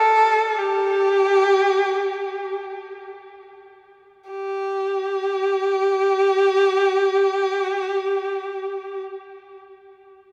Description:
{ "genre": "world meditative, free-time meditation music", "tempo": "free time", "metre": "none", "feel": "none", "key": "unclear", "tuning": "A4 = 440 Hz", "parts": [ { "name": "bright erhu", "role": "solo", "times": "0.0-9.0 s", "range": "G4 to A4", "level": "-21 LUFS", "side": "equal", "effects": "tape echo" } ], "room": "wet cathedral reverb, RT60 4.1 s", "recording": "none", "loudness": "-21 LUFS", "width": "mono", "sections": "0.0-4.3 A section; 4.3-8.8 B section", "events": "none", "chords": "none", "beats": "free time" }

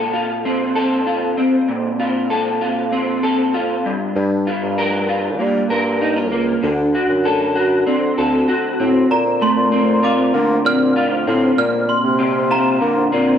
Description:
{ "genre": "indie pop, bedroom pop", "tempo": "97 BPM", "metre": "4/4", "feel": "straight", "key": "Bb major", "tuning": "A4 = 440 Hz", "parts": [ { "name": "electric guitar through a small old amp", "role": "accompaniment", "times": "0.0-13.4 s", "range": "G2 to Bb4", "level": "-16 LUFS", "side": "equal", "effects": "ensemble chorus, warbly pitch drift" }, { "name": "warm bassoon", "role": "bass", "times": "4.2-13.4 s", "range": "Db2 to Bb3", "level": "-20 LUFS", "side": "equal", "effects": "none" }, { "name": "glockenspiel with soft plastic mallets", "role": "melody", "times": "9.1-13.4 s", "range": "Bb5 to F6", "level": "-20 LUFS", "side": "equal", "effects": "ensemble chorus, analog delay" } ], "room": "moderate spring reverb, RT60 1.2 s, small room ambience", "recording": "none", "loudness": "-15 LUFS", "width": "side -8 dB against mid", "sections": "0.0-9.1 A section; 9.1-13.4 B section", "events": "none", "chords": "0.0 Bbsus2; 3.8 Gm7; 6.6 D7; 9.1 Bbmaj9", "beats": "0.44 1.06 | 1.68 2.30 2.92 3.54 | 4.16 4.77 5.39 6.01 | 6.63 7.25 7.87 8.48 | 9.10 9.72 10.34 10.96 | 11.58 12.20 12.81" }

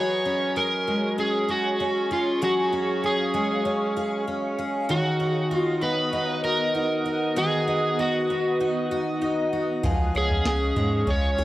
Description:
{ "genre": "dream pop", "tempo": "97 BPM", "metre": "4/4", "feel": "straight", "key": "unclear", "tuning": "A4 = 441 Hz", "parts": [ { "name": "overdriven slide guitar", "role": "melody", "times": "0.0-11.4 s", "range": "E#4 to C#5", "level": "-26 LUFS", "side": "right 1 dB", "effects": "tape echo" }, { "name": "shimmering ambient pad", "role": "sustained chords", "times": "0.0-11.4 s", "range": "B3 to D#6", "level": "-30 LUFS", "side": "right 2 dB", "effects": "chorus, built-in reverb, phaser" }, { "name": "picked twelve-string acoustic guitar", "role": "arpeggios", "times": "0.0-11.4 s", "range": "D#3 to G#4", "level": "-26 LUFS", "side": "left 1 dB", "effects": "wide subtle chorus, tape echo" }, { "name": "round analog bass", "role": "bass", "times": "9.8-11.4 s", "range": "C#2 to G#2", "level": "-26 LUFS", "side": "equal", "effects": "none" }, { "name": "soft vintage rhythm box", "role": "drums", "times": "9.8-11.2 s", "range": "kick drum, snare drum, toms", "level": "-28 LUFS", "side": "right 1 dB", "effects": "vintage 12-bit sampler grit" } ], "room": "light reverb, digital ambience", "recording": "dry, gritty hardware recording", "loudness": "-22 LUFS", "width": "side -15 dB against mid", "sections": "0.0-11.4 A section", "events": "none", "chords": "0.0 F#sus2; 4.9 B; 9.8 C#", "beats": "0.56 1.18 1.80 | 2.41 3.03 3.65 4.27 | 4.89 5.51 6.13 6.74 | 7.36 7.98 8.60 9.22 | 9.84 10.46 11.07" }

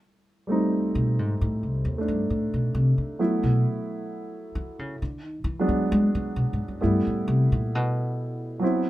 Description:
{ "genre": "jazz ballad", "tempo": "66 BPM", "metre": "4/4", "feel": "swing 66% on 8ths", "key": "unclear", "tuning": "A4 = 441 Hz", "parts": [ { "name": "clear concert grand piano", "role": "accompaniment", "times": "0.5-8.9 s", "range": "F#3 to E4", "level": "-26 LUFS", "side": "right 1 dB", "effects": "none" }, { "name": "upright bass", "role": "bass", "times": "1.0-8.6 s", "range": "C2 to G#3", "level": "-25 LUFS", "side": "equal", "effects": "none" } ], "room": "moderate club reverb, RT60 0.5 s", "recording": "minimal, uncompressed stereo recording", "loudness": "-23 LUFS", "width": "side -15 dB against mid", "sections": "0.0-8.9 A section", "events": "upright bass solo 0.0-8.9", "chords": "0.0 Cm69; 3.2 B7sus4; 5.0 E7; 6.8 A7(no3)", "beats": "0.49 1.39 2.29 | 3.20 4.10 5.00 5.90 | 6.81 7.71 8.62" }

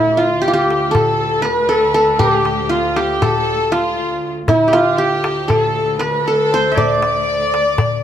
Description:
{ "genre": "Turkish makam ensemble", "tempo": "237 BPM (eighths)", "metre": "9/8", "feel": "straight", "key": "D makam huseyni", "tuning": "A4 = 438 Hz", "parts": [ { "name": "qanun", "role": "melody", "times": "0.0-8.0 s", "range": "E4-30c to E5-30c", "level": "-15 LUFS", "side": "right 1 dB", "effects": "none" }, { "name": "dark clarinet", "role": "second line", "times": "0.0-8.0 s", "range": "E4-32c to D5", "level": "-22 LUFS", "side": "left 5 dB", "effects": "none" }, { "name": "warm studio violin section", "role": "second line", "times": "0.0-8.0 s", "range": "E4-30c to D5", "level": "-23 LUFS", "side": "right 1 dB", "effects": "none" }, { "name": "clear studio cello section", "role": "drone", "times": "0.0-8.0 s", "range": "D2", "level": "-26 LUFS", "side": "left 1 dB", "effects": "none" }, { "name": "darbuka", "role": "percussion", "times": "0.2-7.9 s", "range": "none", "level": "-21 LUFS", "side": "left 3 dB", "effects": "none" } ], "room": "moderate studio reverb, RT60 0.6 s", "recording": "none", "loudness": "-13 LUFS", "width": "side -10 dB against mid", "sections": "0.0-8.0 A section", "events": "none", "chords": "none", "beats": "0.17 0.43 0.68 0.94 1.19 1.44 1.70 1.95 | 2.20 2.46 2.71 2.96 3.22 3.47 3.73 3.98 4.23 | 4.49 4.74 4.99 5.25 5.50 5.75 6.01 6.26 6.51 | 6.77 7.02 7.27 7.53 7.78 8.03" }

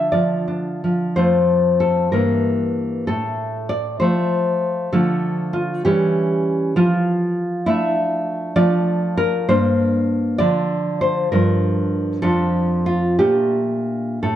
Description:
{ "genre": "romantic piece for solo classical guitar", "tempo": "65 BPM (dotted quarters)", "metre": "6/8", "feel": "rubato", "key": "D minor from 8.6 s", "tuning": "A4 = 442 Hz", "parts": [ { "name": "nylon-string guitar", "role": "solo", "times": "0.0-14.4 s", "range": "F2 to E5", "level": "-17 LUFS", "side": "equal", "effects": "none" } ], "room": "moderate recital hall reverb, RT60 1.4 s", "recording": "dark, warm production", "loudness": "-17 LUFS", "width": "side -11 dB against mid", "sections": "0.0-1.2 A section; 1.2-14.4 B section", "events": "none", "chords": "0.0 Dm; 1.2 F; 2.1 Edim/G; 3.1 F/A; 4.9 Dm; 5.9 C#dim/E; 6.8 Dm/F; 9.5 Gm; 10.4 Dm; 11.3 Gm7; 12.3 Dm/F; 13.2 Bbmaj7", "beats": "0.12 | 1.18 2.13 | 3.08 4.01 | 4.94 5.85 | 6.76 7.67 | 8.57 9.49 | 10.41 11.33 | 12.25 13.21 | 14.23" }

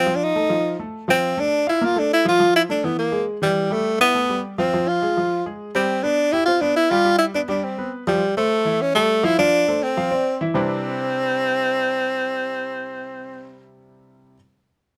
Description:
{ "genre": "jazz", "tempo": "206 BPM", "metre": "4/4", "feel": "straight", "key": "C major", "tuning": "A4 = 440 Hz", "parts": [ { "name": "breathy tenor saxophone", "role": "melody", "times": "0.0-13.6 s", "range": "G3 to F4", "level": "-21 LUFS", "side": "equal", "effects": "none" }, { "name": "clear concert grand piano", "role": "accompaniment", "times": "0.0-14.3 s", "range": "C3 to G5", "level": "-28 LUFS", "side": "equal", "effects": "none" } ], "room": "light reverb", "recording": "close, detailed microphones", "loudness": "-20 LUFS", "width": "mono", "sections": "0.0-8.2 A section; 8.2-10.6 B section; 10.6-12.9 C section", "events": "none", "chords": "0.1 F7; 1.2 Bbmaj7; 2.4 Dm69; 3.0 E; 3.6 Asus2; 4.7 Fm; 5.3 Fmadd9; 5.9 Csus2 (rootless); 8.2 Am7; 8.8 A5; 9.4 Dm7; 10.0 Dm9; 10.6 Cmaj9", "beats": "| 0.07 0.36 0.65 0.94 | 1.23 1.52 1.81 2.11 | 2.40 2.69 2.98 3.27 | 3.56 3.85 4.14 4.44 | 4.73 5.02 5.31 5.60 | 5.89 6.18 6.47 6.76 | 7.06 7.35 7.64 7.93 | 8.22 8.51 8.80 9.09 | 9.38 9.68 9.97 10.26 | 10.55 10.84 11.13 11.43 | 11.72 12.01 12.30 12.60" }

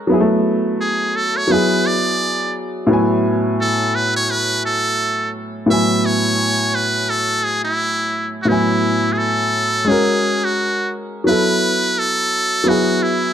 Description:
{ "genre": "hip hop", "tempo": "86 BPM", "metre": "4/4", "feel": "swing 60% on 16ths", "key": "A major", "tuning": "A4 = 440 Hz", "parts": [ { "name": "warm upright piano", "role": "accompaniment", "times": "0.0-13.3 s", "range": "A2 to G#5", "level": "-18 LUFS", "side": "equal", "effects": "none" }, { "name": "trumpet with metal mute", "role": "melody", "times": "0.8-13.3 s", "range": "E4 to E5", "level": "-18 LUFS", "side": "right 1 dB", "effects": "none" } ], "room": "moderate plate reverb, RT60 2.6 s", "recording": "dark, warm production", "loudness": "-15 LUFS", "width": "side -9 dB against mid", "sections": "0.0-8.5 A section; 8.5-13.3 B section", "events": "muted trumpet solo 0.0-8.5", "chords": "0.1 B5; 1.5 E7; 2.9 A5; 9.9 F#; 11.3 B5; 12.7 E", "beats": "| 0.11 0.81 1.51 2.20 | 2.90 3.60 4.30 4.99 | 5.69 6.39 7.09 7.79 | 8.48 9.18 9.88 10.57 | 11.27 11.97 12.67" }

